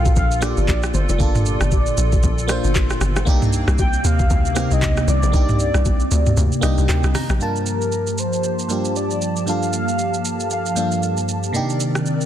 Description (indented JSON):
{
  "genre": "amapiano",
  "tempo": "116 BPM",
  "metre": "4/4",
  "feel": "swing 58% on 16ths",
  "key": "G minor",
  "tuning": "A4 = 440 Hz",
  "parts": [
    { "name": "warm velvety synth lead", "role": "melody", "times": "0.0-11.3 s", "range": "Bb4 to G5", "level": "-26 LUFS", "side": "equal", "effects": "chorus, ping-pong delay" },
    { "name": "FM electric piano", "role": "accompaniment", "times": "0.0-12.3 s", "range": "G2 to Bb5", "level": "-25 LUFS", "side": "equal", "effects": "chorus, phaser" },
    { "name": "hollow soft pad", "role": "sustained chords", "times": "0.0-12.3 s", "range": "Bb2 to A5", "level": "-25 LUFS", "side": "equal", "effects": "ensemble chorus, sidechain pumping" },
    { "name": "hollow log drum bass", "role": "bass", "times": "0.0-7.4 s", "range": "F1 to Eb2", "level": "-20 LUFS", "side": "equal", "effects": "none" },
    { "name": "smooth R&B drum kit", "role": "drums", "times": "0.1-12.3 s", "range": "handclaps, hi-hat, kick drum, rim click, shaker, toms", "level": "-21 LUFS", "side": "equal", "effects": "none" },
    { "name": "bongos and congas", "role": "percussion", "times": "0.1-7.4 s", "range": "none", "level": "-30 LUFS", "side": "left 8 dB", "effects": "none" }
  ],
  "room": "light reverb",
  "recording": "dense, heavily limited modern master",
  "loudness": "-16 LUFS",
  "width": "side -10 dB against mid",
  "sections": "0.0-7.4 A section; 7.4-12.3 B section",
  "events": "drop 0.0-7.4; kick muted 6.4-7.4; FM electric piano fill 6.4-7.4",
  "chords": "0.0 Gm9; 3.3 Cm9; 7.4 Gm9; 11.5 Cm9"
}